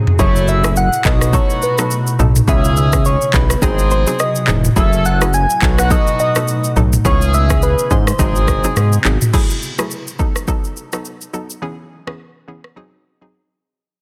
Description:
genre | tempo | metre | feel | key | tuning
afrobeats | 105 BPM | 4/4 | swing 58% on 16ths | C# minor | A4 = 438 Hz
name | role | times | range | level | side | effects
hollow square pluck | accompaniment | 0.0-13.3 s | E3 to A4 | -26 LUFS | equal | chorus
glassy FM pad | sustained chords | 0.0-9.3 s | B2 to G#4 | -26 LUFS | equal | none
afro-pop drum kit | drums | 0.1-12.8 s | crash cymbal, handclaps, kick drum, rim click, shaker, toms | -19 LUFS | equal | none
soft struck synth lead | melody | 0.2-9.1 s | B4 to G#5 | -22 LUFS | equal | chorus
warm horn section | second line | 0.2-9.0 s | A3 to A4 | -27 LUFS | equal | none
fat analog bass | bass | 0.2-9.2 s | E1 to G#2 | -18 LUFS | equal | none
room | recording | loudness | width
digital ambience | dense, heavily limited modern master | -15 LUFS | mono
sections
0.0-9.3 A section; 9.3-13.9 B section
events
drum fill 0.0; fade-out 9.3-13.9; break 13.3-13.9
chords
0.2 F#m9; 1.1 B7; 2.5 C#m7; 3.6 G#7; 4.8 F#m9; 5.6 B7; 7.0 C#m7; 8.2 G#7; 9.3 F#m9; 10.2 B7; 11.6 C#m7; 12.8 G#7

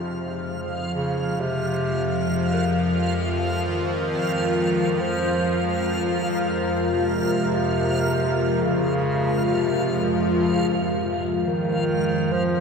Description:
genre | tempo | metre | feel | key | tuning
dark ambient drone | 66 BPM | 4/4 | straight | F minor | A4 = 440 Hz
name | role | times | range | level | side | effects
deep dark ambient pad | sustained chords | 0.0-12.6 s | Ab3 to C5 | -26 LUFS | left 1 dB | chorus, built-in reverb
dark detuned synth bell | arpeggios | 0.0-10.5 s | Eb4 to Bb4 | -41 LUFS | left 2 dB | none
bowed-like drone | drone | 0.0-12.6 s | F2 to F3 | -26 LUFS | equal | built-in reverb, phaser
backwards swelling texture | texture | 0.0-12.6 s | F5 | -31 LUFS | right 1 dB | built-in reverb
mellow bass clarinet | melody | 0.9-12.6 s | C3 to F3 | -26 LUFS | equal | ping-pong delay
room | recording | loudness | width
wet huge ambient reverb, RT60 7.8 s | dreamy mix soaked in reverb | -20 LUFS | side -5 dB against mid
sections
0.0-10.5 A section; 10.5-12.6 B section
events
fade-in on ambient pad 0.0-10.5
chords
0.0 Fm; 10.5 Absus2/F

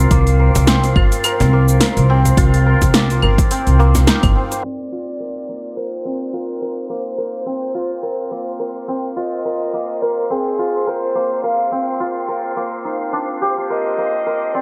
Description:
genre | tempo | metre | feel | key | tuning
organic downtempo | 106 BPM | 4/4 | swing 57% on 16ths | C minor | A4 = 440 Hz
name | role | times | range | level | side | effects
santur | arpeggios | 0.0-14.6 s | Bb3 to C5 | -23 LUFS | equal | vintage 12-bit sampler grit, low-pass filter, delay
upright bass | bass | 0.0-4.3 s | G1 to C2 | -16 LUFS | equal | none
wind-like tuned noise texture | texture | 0.0-14.6 s | C5 | -33 LUFS | equal | built-in reverb
deep house drum kit | drums | 0.1-4.6 s | cabasa, claves, hi-hat, snare drum | -21 LUFS | equal | overdrive, low-pass filter on hats, low-pass filter on snare, low-pass filter on perc, low-pass filter on room
electronic kick drum | drums | 0.1-4.3 s | none | -18 LUFS | equal | overdrive
cajon | percussion | 0.6-4.1 s | none | -23 LUFS | equal | none
dark kamancheh | melody | 4.6-14.6 s | Ab4 to F5 | -26 LUFS | equal | tape echo
room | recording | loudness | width
light reverb, small room ambience | low-pass filter | -17 LUFS | mono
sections
0.0-4.6 A section; 4.6-14.6 B section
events
filter sweep 4.6-14.6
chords
0.1 Bbsus24; 4.6 Csus2; 9.2 Bbsus2

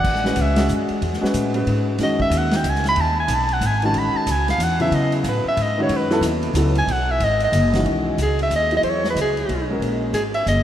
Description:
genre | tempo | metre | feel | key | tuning
modal jazz | 184 BPM | 3/4 | swing 62% on 8ths | A lydian | A4 = 444 Hz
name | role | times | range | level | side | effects
breathy soprano saxophone | melody | 0.0-10.6 s | G#4 to B5 | -21 LUFS | equal | none
upright bass | bass | 0.0-10.6 s | F#1 to C#3 | -22 LUFS | equal | none
vintage drum kit | drums | 0.0-10.6 s | crash cymbal, hi-hat, kick drum, ride cymbal, snare drum | -29 LUFS | equal | none
warm concert grand piano | accompaniment | 0.2-10.1 s | E2 to B4 | -24 LUFS | left 1 dB | none
room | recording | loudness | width
wet cathedral reverb, RT60 5.0 s | in a vast, echoing space | -17 LUFS | side -11 dB against mid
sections
0.0-7.9 A section; 7.9-10.6 B section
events
soprano saxophone solo 0.0-7.9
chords
0.0 Amaj7; 2.0 B; 4.0 Amaj7; 5.9 B; 7.9 E6; 9.8 F#add9

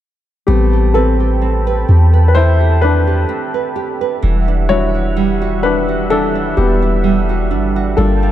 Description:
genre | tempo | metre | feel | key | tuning
R&B | 64 BPM | 4/4 | swing 54% on 16ths | A minor | A4 = 439 Hz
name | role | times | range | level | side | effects
dark grand piano | accompaniment | 0.5-8.3 s | G3 to C#5 | -17 LUFS | left 4 dB | none
warm analog pad | sustained chords | 0.5-8.3 s | G3 to B5 | -22 LUFS | right 1 dB | chorus
nylon-string guitar | arpeggios | 0.5-8.3 s | E3 to B4 | -20 LUFS | right 9 dB | none
soft 808-style bass | bass | 0.5-8.3 s | E1 to E2 | -14 LUFS | equal | none
room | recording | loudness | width
light reverb, studio reverb | dark, warm production | -12 LUFS | side -12 dB against mid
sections
0.5-8.3 A section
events
grand piano solo 0.5-8.3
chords
0.5 Am9; 4.2 Em9

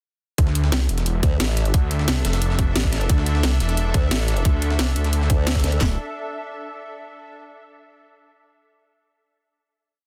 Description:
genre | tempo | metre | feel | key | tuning
dark technical drum and bass | 177 BPM | 4/4 | straight | D minor | A4 = 440 Hz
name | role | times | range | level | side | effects
swarming drone | sustained chords | 0.9-6.0 s | D4 to E5 | -34 LUFS | equal | built-in reverb, sidechain pumping
detuned saw bass | bass | 0.4-6.0 s | D1 to D2 | -23 LUFS | equal | chorus, overdrive
breakbeat sampler-style drum kit | drums | 0.4-5.7 s | hi-hat, snare drum | -36 LUFS | equal | none
drum and bass drum kit | drums | 0.4-5.9 s | handclaps, kick drum, snare drum | -22 LUFS | equal | overdrive
drum and bass drum kit | drums | 0.4-5.8 s | hi-hat, snare drum | -28 LUFS | equal | overdrive
formant-sweep wobble bass | bass | 1.2-5.8 s | A1 to D2 | -23 LUFS | equal | chorus
room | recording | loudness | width
little or no reverb | dense, heavily limited modern master | -21 LUFS | mono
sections
0.4-5.8 drop; 5.8-7.2 final chord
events
drop 0.4-5.8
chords
0.4 Dmadd9; 5.8 Dsus2

